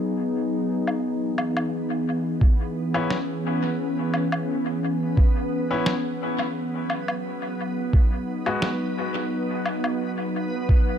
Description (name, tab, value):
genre	ambient dub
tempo	87 BPM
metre	4/4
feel	swing 54% on 16ths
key	G# minor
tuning	A4 = 440 Hz
part	warbly tape-like pad	sustained chords	0.0-11.0 s	E3 to G#4	-26 LUFS	equal	chorus, built-in reverb
part	electronic woodblock and snare drum	drums	0.9-10.0 s	none	-30 LUFS	left 1 dB	overdrive, dub echo
part	backwards swelling texture	texture	1.9-11.0 s	B3 to B4	-34 LUFS	right 3 dB	built-in reverb
part	electronic kick drum	drums	2.4-10.8 s	none	-18 LUFS	right 1 dB	overdrive
part	bright upright piano	stabs	2.9-8.7 s	G#3 to F#4	-31 LUFS	left 3 dB	dub echo
room	light reverb, digital ambience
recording	dark, warm production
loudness	-22 LUFS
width	side -9 dB against mid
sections	0.0-11.0 A section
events	none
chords	0.0 G#m7; 1.0 C#m7; 6.6 G#m7